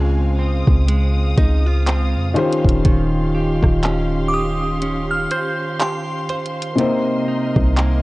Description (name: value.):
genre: contemporary R&B.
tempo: 61 BPM.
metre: 4/4.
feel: swing 58% on 16ths.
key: unclear.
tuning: A4 = 441 Hz.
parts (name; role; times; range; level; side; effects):
felt-muted upright piano; accompaniment; 0.0-8.0 s; C3 to C5; -22 LUFS; left 2 dB; none.
warm studio string section; sustained chords; 0.0-8.0 s; C4 to Eb6; -29 LUFS; left 1 dB; none.
direct-recorded clean electric guitar; arpeggios; 0.0-8.0 s; C3 to C5; -24 LUFS; right 3 dB; none.
warm 808-style bass; bass; 0.0-8.0 s; Eb1 to F2; -18 LUFS; equal; none.
smooth R&B drum kit; drums; 0.7-8.0 s; handclaps, hi-hat, kick drum, rim click; -18 LUFS; equal; none.
glassy synth bell; melody; 4.3-6.5 s; C6 to G6; -24 LUFS; right 1 dB; chorus, tremolo, tape echo.
room: digital ambience.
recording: worn, warbling old tape, cassette tape, warbly pitch drift, nothing above 10.6 kHz.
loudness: -16 LUFS.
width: side -20 dB against mid.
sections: 0.0-8.0 A section.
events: none.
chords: 0.0 Dbmaj7; 2.4 Eb13; 6.8 Cm7.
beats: 0.88 1.87 | 2.85 3.83 4.82 5.80 | 6.79 7.77.